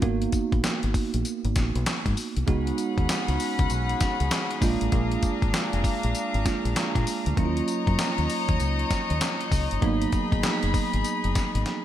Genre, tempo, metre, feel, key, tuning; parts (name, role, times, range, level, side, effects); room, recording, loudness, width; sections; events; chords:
R&B, new jack swing; 98 BPM; 4/4; swing 64% on 16ths; A4 = 436 Hz
bell-like tine electric piano; accompaniment; 0.0-11.8 s; Gb3 to Gb4; -29 LUFS; right 5 dB; analog chorus
deep dub fingered electric bass; bass; 0.0-11.6 s; F1 to Bb2; -27 LUFS; left 1 dB
dusty soul sampler-style drum kit; drums; 0.0-11.8 s; handclaps, hi-hat, kick drum, snare drum, tambourine; -27 LUFS; left 1 dB; gated reverb
warm studio string section; sustained chords; 2.5-11.8 s; Db4 to Cb6; -29 LUFS; left 3 dB
light reverb, digital ambience; bright 1980s-style digital production; -23 LUFS; side -11 dB against mid
0.0-11.8 A section
drum fill 11.7
0.0 Abm7; 2.5 Db7sus4; 4.6 Bb7; 7.4 Ebm7; 9.8 Abm7